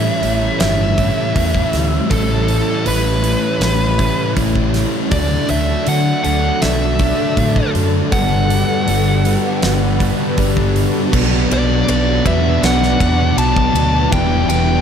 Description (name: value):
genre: rock, shoegaze and dream pop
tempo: 80 BPM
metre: 4/4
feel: straight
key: A mixolydian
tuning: A4 = 440 Hz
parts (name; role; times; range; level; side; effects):
- bluesy overdriven lead guitar; melody; 0.0-14.8 s; A4 to A5; -20 LUFS; equal; distortion, slapback echo
- overdriven electric guitar; riff; 0.0-14.8 s; G2 to E4; -21 LUFS; right 10 dB; reverse reverb
- thick fuzz guitar; riff; 0.0-14.8 s; E2 to D4; -20 LUFS; left 11 dB; distortion, analog chorus
- overdriven fingered electric bass; bass; 0.0-14.8 s; E1 to D3; -18 LUFS; equal; none
- huge arena drum kit; drums; 0.2-14.7 s; crash cymbal, hi-hat, kick drum, ride cymbal, snare drum; -22 LUFS; equal; none
- granular cloud pad; sustained chords; 6.2-14.8 s; F#3 to E5; -25 LUFS; left 1 dB; built-in reverb
room: light reverb, studio ambience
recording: none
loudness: -13 LUFS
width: side -8 dB against mid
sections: 0.0-11.1 A section; 11.1-14.8 B section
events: none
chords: 0.0 A7sus2; 5.1 D; 8.1 Gmaj9; 11.1 Bm; 14.1 Em